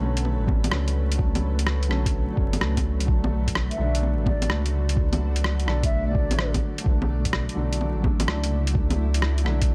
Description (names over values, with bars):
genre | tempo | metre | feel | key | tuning
future garage | 127 BPM | 4/4 | swing 66% on 16ths | B minor | A4 = 440 Hz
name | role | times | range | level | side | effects
felt-muted upright piano | accompaniment | 0.0-9.7 s | D3 to D4 | -33 LUFS | equal | sidechain pumping, tape echo
granular cloud pad | sustained chords | 0.0-9.7 s | F#3 to D5 | -37 LUFS | equal | built-in reverb, sidechain pumping
dark detuned saw bass | bass | 0.0-9.7 s | F#1 to C#2 | -27 LUFS | equal | tube saturation, sidechain pumping
lo-fi sampler-style drum kit | drums | 0.2-9.7 s | bongos, hi-hat, rim click | -31 LUFS | equal | overdrive
electronic kick drum | drums | 0.5-9.7 s | none | -27 LUFS | equal | overdrive
mellow wooden flute | melody | 3.7-6.5 s | D5 to E5 | -37 LUFS | equal | analog delay
room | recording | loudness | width
light reverb, digital ambience | vinyl crackle | -24 LUFS | mono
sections
0.0-9.7 A section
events
none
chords
0.0 Bm9